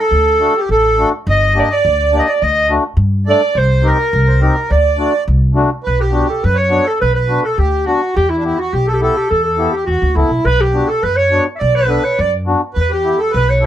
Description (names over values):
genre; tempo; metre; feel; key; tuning
klezmer; 104 BPM; 2/4; straight; D phrygian dominant, B minor from 5.8 s; A4 = 438 Hz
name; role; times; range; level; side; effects
mellow clarinet; melody; 0.0-13.7 s; E4 to E5; -15 LUFS; right 1 dB; none
accordion; second line; 0.0-13.7 s; D4 to Eb5; -21 LUFS; right 5 dB; none
upright bass; bass; 0.1-13.7 s; G1 to G2; -16 LUFS; equal; none
mellow accordion; accompaniment; 0.4-13.7 s; A3 to A4; -18 LUFS; left 4 dB; none
room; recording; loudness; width
light reverb; dark, warm production; -12 LUFS; side -11 dB against mid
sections
0.0-5.8 A section; 5.8-13.7 B section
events
none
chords
0.1 D; 1.3 Gm; 2.4 D5; 3.6 Cm; 4.7 D; 5.8 Bm; 8.2 Em; 10.5 Bm; 12.8 Em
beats
| 0.10 0.68 | 1.25 1.83 | 2.40 2.98 | 3.55 4.12 | 4.70 5.28 | 5.85 6.43 | 7.00 7.58 | 8.15 8.73 | 9.30 9.88 | 10.46 11.03 | 11.61 12.18 | 12.76 13.33